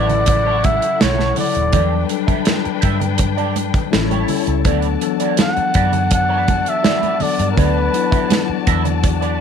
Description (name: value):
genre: lush 1970s-style soul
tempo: 82 BPM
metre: 4/4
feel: straight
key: D major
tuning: A4 = 440 Hz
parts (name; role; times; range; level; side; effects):
- breathy flugelhorn; melody; 0.0-8.7 s; Bb4 to F#5; -19 LUFS; right 1 dB; none
- warm symphonic violin section; second line; 0.0-9.4 s; D4 to A5; -26 LUFS; left 10 dB; none
- mellow tine electric piano; accompaniment; 0.0-9.4 s; C#3 to A4; -22 LUFS; left 15 dB; none
- electric guitar through a small old amp; riff; 0.0-9.4 s; E4 to E5; -26 LUFS; right 14 dB; wah
- vintage muted fingered electric bass; bass; 0.0-9.4 s; Eb1 to G2; -20 LUFS; right 1 dB; tube saturation
- modern studio drum kit; drums; 0.1-9.4 s; hi-hat, kick drum, snare drum; -19 LUFS; right 1 dB; none
- congas; percussion; 0.1-9.2 s; none; -26 LUFS; right 12 dB; none
room: light reverb, small room ambience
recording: 1960s-style stereo with parts hard left and right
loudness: -14 LUFS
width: side -7 dB against mid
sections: 0.0-9.4 A section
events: none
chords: 0.0 F#m7; 1.7 Em11; 3.9 A7; 4.7 D6